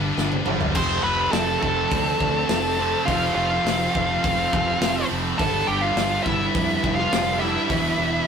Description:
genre	heavy metal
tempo	104 BPM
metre	4/4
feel	straight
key	unclear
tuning	A4 = 439 Hz
part	rich studio string section	sustained chords	0.0-8.3 s	D3 to C5	-37 LUFS	right 1 dB	none
part	fuzz guitar	riff	0.0-8.3 s	E2 to G3	-31 LUFS	equal	distortion
part	high-gain distorted guitar	riff	0.0-8.3 s	E2 to G3	-29 LUFS	right 6 dB	distortion
part	scooped high-gain guitar	riff	0.0-8.3 s	A3 to E4	-29 LUFS	left 5 dB	distortion
part	fingered electric bass	bass	0.0-8.2 s	E1 to F2	-29 LUFS	left 1 dB	none
part	modern studio drum kit	drums	0.2-7.8 s	crash cymbal, hi-hat, kick drum, snare drum, toms	-27 LUFS	left 1 dB	none
part	high-gain lead guitar	melody	0.8-8.3 s	E5 to C6	-24 LUFS	equal	distortion
part	high-gain lead guitar	second line	0.8-8.3 s	E4 to C5	-28 LUFS	right 2 dB	distortion
room	light reverb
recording	rough rehearsal-room recording, warm saturation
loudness	-19 LUFS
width	side -7 dB against mid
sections	0.0-8.3 A section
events	drum fill 0.2-0.8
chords	0.0 G; 0.8 F; 5.4 G; 7.7 Em

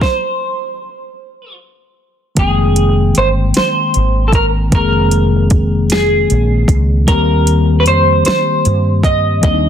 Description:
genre	slow six-eight R&B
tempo	51 BPM (dotted quarters)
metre	6/8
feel	straight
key	F minor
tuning	A4 = 440 Hz
part	semi-hollow electric guitar	melody	0.0-9.7 s	Ab4 to Eb5	-16 LUFS	right 1 dB	analog chorus, slapback echo
part	mellow tine electric piano	accompaniment	0.0-9.7 s	Eb3 to G5	-16 LUFS	left 2 dB	slow stereo tremolo
part	smooth R&B drum kit	drums	0.0-9.6 s	hi-hat, kick drum, snare drum	-15 LUFS	equal	overdrive
part	woody fretless electric bass	bass	2.4-9.7 s	F1 to G2	-14 LUFS	equal	analog chorus
room	light reverb, digital ambience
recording	dense, heavily limited modern master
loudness	-10 LUFS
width	side -9 dB against mid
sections	0.0-2.4 A section; 2.4-9.7 B section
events	stop 0.0-2.4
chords	0.0 N.C.; 2.4 Fm11; 7.1 Cm7/Eb

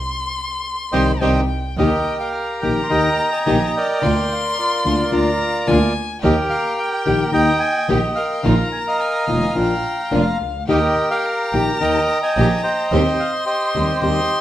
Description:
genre	tango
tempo	108 BPM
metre	4/4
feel	rubato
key	Eb major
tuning	A4 = 440 Hz
part	warm violin	second line	0.0-14.4 s	F5 to C6	-25 LUFS	left 3 dB	none
part	bandoneon	melody	0.9-14.4 s	F4 to C6	-20 LUFS	right 1 dB	none
part	nylon-string guitar	accompaniment	0.9-14.2 s	D3 to G4	-21 LUFS	left 3 dB	none
part	rich studio string section	stabs	0.9-14.3 s	Bb3 to G4	-27 LUFS	right 2 dB	none
part	clear double bass	bass	0.9-14.3 s	F1 to Eb2	-22 LUFS	right 2 dB	none
room	moderate large studio reverb, RT60 1.0 s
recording	minimal, uncompressed stereo recording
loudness	-16 LUFS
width	side -12 dB against mid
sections	0.0-1.8 A section; 1.8-14.4 B section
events	band accent 0.0-1.8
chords	0.0 Cm; 1.8 Eb; 4.0 Bb/D; 6.2 Eb; 8.5 Bbsus4; 9.6 Bb; 10.7 Eb; 12.9 Cm/Eb

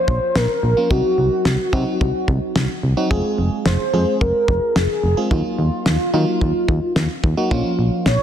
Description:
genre	synth-pop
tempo	109 BPM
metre	4/4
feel	straight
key	Bb minor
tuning	A4 = 444 Hz
part	warm velvety synth lead	melody	0.0-8.2 s	F4 to Db5	-21 LUFS	equal	chorus, ping-pong delay
part	FM electric piano	accompaniment	0.0-8.2 s	F3 to Ab4	-23 LUFS	right 1 dB	chorus
part	solid FM bass	bass	0.1-8.2 s	F1 to Eb3	-20 LUFS	equal	none
part	damped 70s drum kit	drums	0.1-8.2 s	kick drum, snare drum	-21 LUFS	equal	none
room	moderate lush hall reverb, RT60 2.1 s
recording	dense, heavily limited modern master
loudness	-16 LUFS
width	side -9 dB against mid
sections	0.0-8.2 A section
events	none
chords	0.0 Bbmadd9; 0.9 Cdim; 3.1 Fm; 5.3 Ebmadd9; 7.5 Bbm

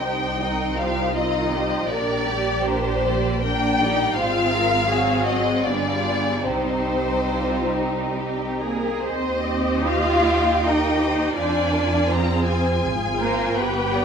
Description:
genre	classical, slow romantic movement for string orchestra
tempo	68-86 BPM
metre	3/4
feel	rubato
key	C minor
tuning	A4 = 436 Hz
part	warm studio violin section	melody	0.0-14.0 s	C5 to Bb5	-25 LUFS	left 3 dB	none
part	warm studio violin section	second line	0.0-14.0 s	Eb4 to F5	-26 LUFS	left 2 dB	none
part	dark studio viola section	accompaniment	0.0-14.0 s	Eb3 to Eb5	-26 LUFS	right 1 dB	none
part	warm studio double bass section	bass	0.0-14.0 s	G1 to F2	-27 LUFS	right 3 dB	none
part	warm studio cello section	bass	0.4-14.0 s	Bb3 to Ab4	-26 LUFS	right 2 dB	none
room	wet scoring stage reverb, RT60 2.0 s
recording	minimal, uncompressed stereo recording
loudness	-19 LUFS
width	side -7 dB against mid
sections	0.0-9.0 A section; 9.0-14.0 B section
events	none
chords	0.0 Cm; 1.9 Gm/Bb; 4.2 Fm/Ab; 4.9 Ab7; 5.7 G7b9; 6.5 Cm; 9.0 Cm/Eb; 11.4 Fm

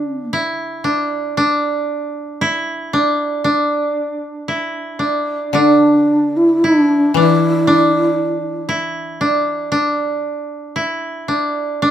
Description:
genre	japanese traditional, Japanese chamber music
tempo	58 BPM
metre	2/4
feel	rubato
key	unclear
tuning	A4 = 440 Hz
part	breathy mellow long shakuhachi	melody	0.0-0.3, 5.5-8.7 s	D4 to E4	-14 LUFS	right 1 dB	none
part	koto	second line	0.0-11.9 s	D4 to E4	-17 LUFS	right 1 dB	none
part	koto	accompaniment	0.0-1.9, 5.5-10.2 s	D3 to E3	-20 LUFS	left 8 dB	none
room	wet studio reverb, RT60 0.5 s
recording	none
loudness	-14 LUFS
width	side -10 dB against mid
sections	0.0-11.9 A section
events	none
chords	none

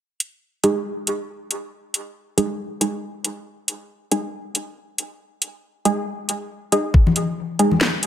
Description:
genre	deep dubstep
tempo	138 BPM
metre	4/4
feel	swing 60% on 16ths, half-time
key	unclear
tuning	A4 = 435 Hz
part	garage drum kit	drums	0.2-8.1 s	hi-hat, snare drum	-20 LUFS	equal	none
part	filtered dub chord stab	stabs	0.6-7.7 s	G#3 to G#4	-22 LUFS	right 1 dB	chorus, dub echo
part	electronic kick drum	drums	6.9-7.0 s	none	-12 LUFS	equal	none
part	congas	percussion	7.1-7.8 s	none	-22 LUFS	left 3 dB	none
room	moderate echo chamber reverb, RT60 1.4 s, digital ambience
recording	none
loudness	-21 LUFS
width	side -10 dB against mid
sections	0.0-8.1 A section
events	filter sweep on synth stab 0.0-8.1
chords	0.0 G#5

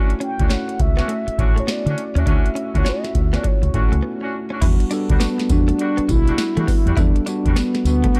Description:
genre	R&B, new jack swing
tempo	102 BPM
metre	4/4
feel	swing 64% on 16ths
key	E dorian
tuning	A4 = 440 Hz
part	bell-like tine electric piano	accompaniment	0.0-8.2 s	G3 to A4	-28 LUFS	equal	none
part	direct-recorded clean electric guitar	riff	0.0-8.2 s	G3 to E4	-32 LUFS	equal	lush chorus
part	mellow horn section	stabs	0.0-8.2 s	G3 to F#4	-33 LUFS	equal	none
part	booming analog drum machine	drums	0.1-8.2 s	crash cymbal, hi-hat, kick drum, snare drum, tambourine	-22 LUFS	equal	none
part	mellow horn-like synth lead	melody	0.2-8.2 s	B3 to G5	-26 LUFS	equal	chorus
part	deep dub fingered electric bass	bass	0.4-8.1 s	A1 to E3	-22 LUFS	equal	none
room	digital ambience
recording	dark, warm production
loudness	-19 LUFS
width	mono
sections	0.0-4.6 A section; 4.6-8.2 B section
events	break 4.0-4.6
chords	0.0 Dmaj7; 4.6 Em9

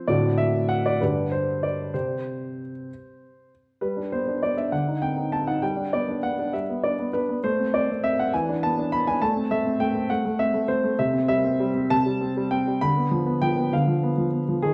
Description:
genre	classical-period piano sonatina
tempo	66 BPM (dotted quarters)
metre	6/8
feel	straight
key	C major, G major from 3.8 s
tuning	A4 = 439 Hz
part	warm grand piano	solo	0.0-14.7 s	G2 to B5	-24 LUFS	equal	none
room	wet recital hall reverb, RT60 1.4 s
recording	dark, warm production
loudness	-24 LUFS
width	mono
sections	0.0-3.8 A section; 3.8-14.7 B section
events	none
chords	0.1 D7/A; 1.0 G5; 1.9 C5; 3.8 G; 4.7 D7b9; 5.6 G; 7.4 Am; 8.3 E5; 9.2 Am; 11.0 C; 12.8 Bdim/D

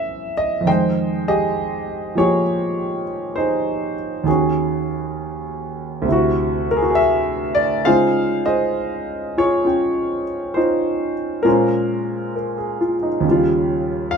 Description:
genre	solo jazz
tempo	67 BPM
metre	4/4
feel	swing 67% on 8ths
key	unclear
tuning	A4 = 440 Hz
part	warm concert grand piano	solo	0.0-14.2 s	D2 to G5	-17 LUFS	equal	none
room	light reverb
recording	minimal, uncompressed stereo recording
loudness	-17 LUFS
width	side -6 dB against mid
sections	0.0-14.2 A section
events	none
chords	0.0 Gb7#11; 0.7 Fm9; 4.3 Ebm7; 6.1 D9; 7.9 Dbmaj9; 11.4 Bbm9; 13.2 Eb9

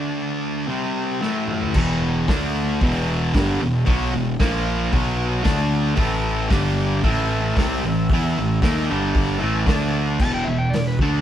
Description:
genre	garage rock duo or trio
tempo	114 BPM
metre	4/4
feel	straight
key	E minor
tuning	A4 = 436 Hz
part	overdriven combo organ	sustained chords	0.0-1.7, 6.0-10.2 s	D4 to A5	-32 LUFS	left 1 dB	none
part	thick fuzz guitar	riff	0.0-11.2 s	E2 to E4	-21 LUFS	equal	distortion
part	vintage drum kit	drums	1.2-11.1 s	crash cymbal, hi-hat, kick drum, snare drum, toms	-23 LUFS	equal	none
part	growling picked electric bass	bass	1.8-11.2 s	E1 to E2	-26 LUFS	equal	overdrive, tube saturation
part	electric slide guitar	melody	10.2-11.2 s	A4 to A5	-27 LUFS	left 1 dB	none
room	light reverb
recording	band playing live in one room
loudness	-18 LUFS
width	side -10 dB against mid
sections	0.0-1.8 A section; 1.8-10.2 B section; 10.2-11.2 C section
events	break 0.0-1.8; drum fill 1.2-1.8; transistor combo organ fill 8.6-10.2; electric slide guitar solo 10.2-11.2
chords	0.0 D5; 0.7 C5; 1.2 A5; 1.8 E5; 2.3 D5; 2.8 Em; 4.4 A#5; 4.9 B5; 5.5 D5; 6.0 A5; 6.5 G5; 7.0 A5; 8.9 G5; 9.4 A5; 9.7 D5; 10.2 E5

